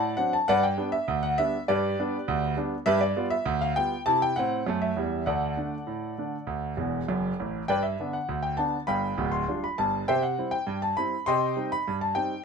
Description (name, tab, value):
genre	ragtime piano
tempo	100 BPM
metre	2/4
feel	straight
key	G major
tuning	A4 = 440 Hz
part	warm concert grand piano	solo	0.0-12.4 s	D1 to C6	-25 LUFS	equal	none
room	light reverb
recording	minimal, uncompressed stereo recording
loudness	-25 LUFS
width	side -5 dB against mid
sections	0.0-12.4 A section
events	grand piano fill 6.8-7.7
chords	0.5 G; 2.9 G7; 4.1 C; 5.3 D; 7.7 G; 8.9 G5; 10.1 C; 11.3 Cm